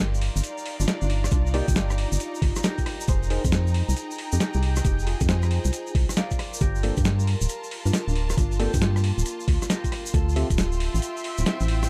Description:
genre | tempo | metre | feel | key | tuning
UK garage, two-step garage | 136 BPM | 4/4 | swing 65% on 16ths | C minor | A4 = 439 Hz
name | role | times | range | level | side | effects
Celtic harp | melody | 0.0-11.9 s | Bb3 to F5 | -37 LUFS | equal | tape echo
organ-like FM bass | bass | 0.0-11.9 s | D1 to G2 | -26 LUFS | equal | sidechain pumping
rich studio string section | texture | 0.0-11.9 s | Eb4 to C6 | -38 LUFS | equal | sidechain pumping
egg shaker | percussion | 0.1-11.9 s | none | -38 LUFS | equal | none
boom bap sampler-style drum kit | drums | 0.2-11.9 s | hi-hat, rim click, snare drum | -31 LUFS | equal | none
electronic kick drum | drums | 1.3-10.6 s | none | -27 LUFS | equal | none
percussive organ stab | stabs | 1.5-3.4, 6.8-10.5 s | F3 to G5 | -34 LUFS | equal | subtle chorus
room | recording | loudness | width
small room ambience | dark, warm production | -24 LUFS | mono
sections
0.0-11.9 A section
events
none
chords
0.0 Cm11; 2.9 Fm11; 6.4 Gm11; 10.1 Dm11

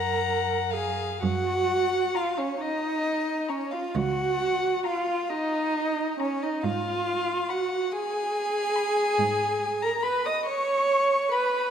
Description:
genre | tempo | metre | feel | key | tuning
classical, slow romantic movement for string quartet | 38-48 BPM (dotted quarters) | 12/8 | rubato | F# major | A4 = 440 Hz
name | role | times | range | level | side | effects
warm violin | melody | 0.0-11.6 s | E#5 to B5 | -35 LUFS | left 11 dB | none
warm violin | second line | 0.0-11.7 s | C#5 to D#6 | -29 LUFS | left 3 dB | none
dark viola | accompaniment | 0.0-11.7 s | C#4 to D#5 | -26 LUFS | right 2 dB | none
dark cello | bass | 0.0-10.2 s | C#2 to G#2 | -32 LUFS | right 4 dB | none
room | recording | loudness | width
wet concert hall reverb, RT60 2.0 s | none | -24 LUFS | side -8 dB against mid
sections
0.0-1.2 A section; 1.2-11.7 B section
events
none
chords
0.0 F#; 6.6 C#7/G#

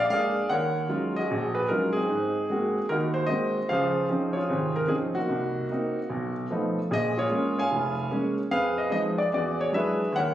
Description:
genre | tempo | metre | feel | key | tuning
solo jazz | 149 BPM | 4/4 | swing 64% on 8ths | Eb minor | A4 = 440 Hz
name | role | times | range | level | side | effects
warm grand piano | solo | 0.0-10.3 s | F1 to Ab5 | -24 LUFS | equal | none
room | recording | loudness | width
moderate large studio reverb, RT60 1.1 s | recorded on a phone in the room, club reverb, compression | -24 LUFS | side -12 dB against mid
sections
0.5-10.3 A section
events
none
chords
0.5 Ebm11; 2.1 Ab9; 3.7 Dbmaj9; 5.3 Cm7b5; 6.1 B7#11; 6.9 Bbm7; 8.5 Fm7b5; 9.3 E9

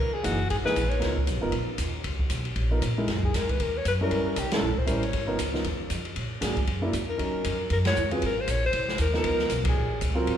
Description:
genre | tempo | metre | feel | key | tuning
jazz, small-group swing and bop | 233 BPM | 4/4 | swing 59% on 8ths | Db mixolydian | A4 = 440 Hz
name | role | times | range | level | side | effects
breathy alto saxophone | melody | 0.0-10.0 s | Gb4 to Db5 | -29 LUFS | left 3 dB | none
upright bass | bass | 0.0-10.4 s | F1 to Bb2 | -29 LUFS | equal | none
dark baby grand piano | accompaniment | 0.2-10.4 s | Fb3 to Bb4 | -30 LUFS | right 2 dB | none
open jazz drum kit | drums | 0.2-10.3 s | hi-hat, kick drum, ride cymbal, snare drum | -30 LUFS | equal | none
room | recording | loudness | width
moderate concert hall reverb, RT60 2.2 s | recorded in a church or concert hall | -24 LUFS | side -10 dB against mid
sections
0.0-10.4 A section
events
band accent 4.5, 7.8, 9.6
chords
0.0 Gb13; 1.0 Db13; 3.1 Gb6; 4.1 Gdim7; 5.1 Db13; 6.2 Bbaug7; 7.2 Ebm7; 8.2 Ab69; 9.2 Db13; 9.8 Bbm7

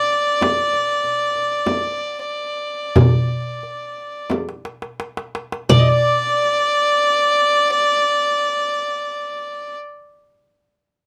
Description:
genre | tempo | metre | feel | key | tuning
Arabic maqam ensemble | 84-98 BPM (eighths) | 10/8 | straight | unclear | A4 = 440 Hz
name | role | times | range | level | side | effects
qanun | melody | 0.0-9.5 s | D5 | -22 LUFS | equal | none
rich violin | second line | 0.0-9.8 s | D5 to Eb5+24c | -20 LUFS | equal | none
darbuka | percussion | 0.4-6.4 s | none | -21 LUFS | equal | none
frame drum | percussion | 0.4-6.4 s | none | -22 LUFS | equal | none
room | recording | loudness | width
wet small room reverb, RT60 0.5 s | none | -18 LUFS | mono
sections
0.0-5.7 A section; 5.7-11.1 B section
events
slowing down 0.0-5.7; drum fill 4.3-5.7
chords
none

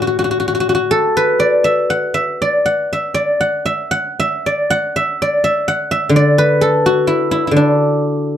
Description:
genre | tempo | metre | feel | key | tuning
chinese traditional, Chinese solo plucked strings | 82 BPM | 2/4 | uneven beats, rubato | D gong mode | A4 = 440 Hz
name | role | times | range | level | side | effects
guzheng | solo | 0.0-8.4 s | A2 to F#5 | -13 LUFS | equal | none
room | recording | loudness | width
light reverb | dark, warm production | -13 LUFS | side -10 dB against mid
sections
0.0-8.4 A section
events
none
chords
none

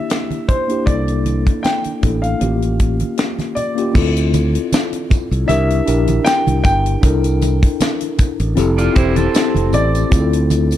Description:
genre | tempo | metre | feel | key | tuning
lush 1970s-style soul | 78 BPM | 4/4 | swing 54% on 16ths | D minor | A4 = 440 Hz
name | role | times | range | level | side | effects
warm baby grand piano | melody | 0.0-10.8 s | C5 to G5 | -22 LUFS | equal | none
mellow tine electric piano | accompaniment | 0.0-10.8 s | Bb3 to C5 | -20 LUFS | left 2 dB | medium stereo tremolo
tight funk drum kit | drums | 0.1-10.8 s | crash cymbal, hi-hat, kick drum, snare drum | -17 LUFS | equal | none
congas | percussion | 0.3-10.7 s | none | -25 LUFS | right 5 dB | none
modern bright fingered electric bass | bass | 0.9-10.7 s | E1 to D2 | -17 LUFS | equal | none
tambourine | percussion | 4.0-10.8 s | none | -36 LUFS | right 10 dB | none
electric guitar at the edge of break-up | riff | 8.8-10.1 s | C4 to D5 | -23 LUFS | right 5 dB | none
room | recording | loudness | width
small room ambience | dark, warm production | -14 LUFS | side -12 dB against mid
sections
0.0-4.0 A section; 4.0-10.8 B section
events
none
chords
0.0 C9; 0.9 C13; 2.4 A7b9b13; 4.0 Dm7; 5.5 C9; 7.0 C13; 8.6 Fmaj9; 10.1 Dm7

